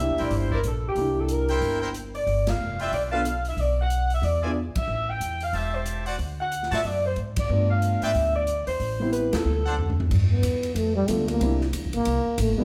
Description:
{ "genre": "jazz, big band swing", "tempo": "184 BPM", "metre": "4/4", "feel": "swing 61% on 8ths", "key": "unclear", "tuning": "A4 = 440 Hz", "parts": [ { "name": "mellow saxophone section", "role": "melody", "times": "0.0-10.0 s", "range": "G4 to G5", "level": "-29 LUFS", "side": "equal", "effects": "none" }, { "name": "warm grand piano", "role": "accompaniment", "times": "0.0-4.6, 7.5-12.6 s", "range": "G3 to A4", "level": "-32 LUFS", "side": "equal", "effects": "none" }, { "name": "upright bass", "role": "bass", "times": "0.0-12.6 s", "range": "E1 to A2", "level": "-29 LUFS", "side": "equal", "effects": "none" }, { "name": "brilliant trumpet section", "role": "stabs", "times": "0.2-9.7 s", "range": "D4 to A5", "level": "-35 LUFS", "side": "equal", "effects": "none" }, { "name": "swinging big-band drum kit", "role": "drums", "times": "0.2-12.5 s", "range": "crash cymbal, hi-hat, kick drum, ride cymbal, snare drum, toms", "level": "-34 LUFS", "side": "equal", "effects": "none" }, { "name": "breathy trombone", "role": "melody", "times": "10.3-12.6 s", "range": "G3 to B3", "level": "-27 LUFS", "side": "equal", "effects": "none" } ], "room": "wet large studio reverb, RT60 1.2 s", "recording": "heard from further back in the room", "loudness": "-25 LUFS", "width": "mono", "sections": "0.0-10.1 A section; 10.1-12.6 B section", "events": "band accent 2.4, 4.7, 7.3, 9.3; drum fill 4.6-4.9, 9.8-10.1; trombone solo 10.1-12.6", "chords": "0.0 C7; 2.3 G7; 3.6 B5; 4.2 E7b9; 4.9 Am7; 6.2 D; 7.5 G7; 8.8 Am7; 9.5 D7; 10.1 G7; 11.4 C7" }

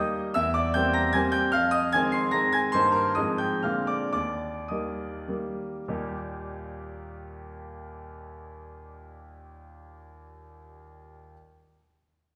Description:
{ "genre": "classical, romantic triple-time dance for piano with dotted rhythms", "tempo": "98-158 BPM", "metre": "3/4", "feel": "rubato", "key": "Eb major", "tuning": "A4 = 440 Hz", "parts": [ { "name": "bright concert grand piano", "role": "solo", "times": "0.0-11.3 s", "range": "Eb2 to C7", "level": "-28 LUFS", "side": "equal", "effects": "none" } ], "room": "wet recital hall reverb, RT60 1.4 s", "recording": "recorded in a church or concert hall", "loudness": "-26 LUFS", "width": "mono", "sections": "0.0-5.9 A section; 5.9-9.2 B section", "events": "slowing down 2.1-5.9", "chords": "0.4 C7/E; 1.5 Fm7; 2.7 Eb/G; 3.2 Fm7/Ab; 3.6 Bb9; 4.1 Eb" }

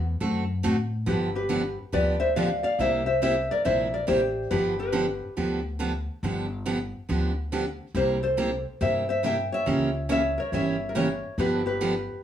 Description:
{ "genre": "country, western swing", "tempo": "140 BPM", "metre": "4/4", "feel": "swing 65% on 8ths", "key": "G mixolydian", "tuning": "A4 = 441 Hz", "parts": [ { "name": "upright bass", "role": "bass", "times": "0.0-12.1 s", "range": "G1 to A2", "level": "-31 LUFS", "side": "left 1 dB", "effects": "none" }, { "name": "picked steel-string acoustic guitar", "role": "accompaniment", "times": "0.2-11.9 s", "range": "C3 to A4", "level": "-28 LUFS", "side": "right 2 dB", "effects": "none" }, { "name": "nylon-string guitar", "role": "melody", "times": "1.1-5.3, 8.0-12.2 s", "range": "G4 to G5", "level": "-26 LUFS", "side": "left 1 dB", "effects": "plate reverb" } ], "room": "moderate studio reverb, RT60 0.6 s", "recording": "small room ambience", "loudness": "-24 LUFS", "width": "side -10 dB against mid", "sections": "0.0-1.1 A section; 1.1-12.2 B section", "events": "none", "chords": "0.0 D7; 1.1 G7; 2.8 C7; 4.5 G7; 7.9 C7; 9.7 C#dim7; 11.4 G7" }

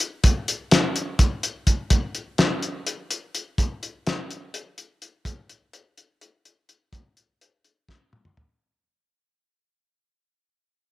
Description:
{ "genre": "rock", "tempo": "252 BPM (eighths)", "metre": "7/8", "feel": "straight", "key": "none", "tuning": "none", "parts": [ { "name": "cloth-damped thuddy drum kit", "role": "drums", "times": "0.0-8.5 s", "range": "hi-hat, kick drum, snare drum, toms", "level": "-20 LUFS", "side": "equal", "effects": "none" } ], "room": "moderate spring reverb, RT60 1.3 s", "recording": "1960s-style stereo", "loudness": "-22 LUFS", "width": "side -17 dB against mid", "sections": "0.0-8.6 A section", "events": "fade-out 0.0-8.6; drum fill 7.9-8.6", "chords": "none" }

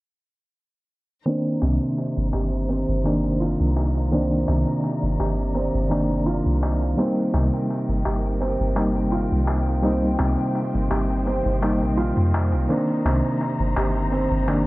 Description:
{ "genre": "trip hop", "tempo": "84 BPM", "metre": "4/4", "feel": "straight", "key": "C minor", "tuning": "A4 = 440 Hz", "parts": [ { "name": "reed electric piano", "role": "accompaniment", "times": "1.3-14.7 s", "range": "Eb3 to Eb4", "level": "-24 LUFS", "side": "equal", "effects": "fast tremolo, harmonic tremolo, low-pass filter, tape echo" }, { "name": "clear symphonic string section", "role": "sustained chords", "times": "1.3-14.7 s", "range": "Eb3 to Bb5", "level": "-32 LUFS", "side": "left 2 dB", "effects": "none" }, { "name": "felt-muted upright piano", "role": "arpeggios", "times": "1.3-14.7 s", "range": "C3 to G4", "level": "-26 LUFS", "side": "right 2 dB", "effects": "low-pass filter, digital delay" }, { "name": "darbuka", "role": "percussion", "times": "1.3-14.6 s", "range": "none", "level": "-34 LUFS", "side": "left 2 dB", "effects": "none" }, { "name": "soft 808-style bass", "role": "bass", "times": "1.6-14.7 s", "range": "G1 to F2", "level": "-23 LUFS", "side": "equal", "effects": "none" } ], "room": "light reverb, small room ambience", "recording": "low-pass filter", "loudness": "-20 LUFS", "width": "side -20 dB against mid", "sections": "1.3-14.7 A section", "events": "filter sweep on reed electric piano 1.3-14.7; filter sweep on felt piano 1.3-14.7; filter sweep 1.3-14.7", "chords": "1.3 Cm7; 7.0 Eb; 12.7 Cm7" }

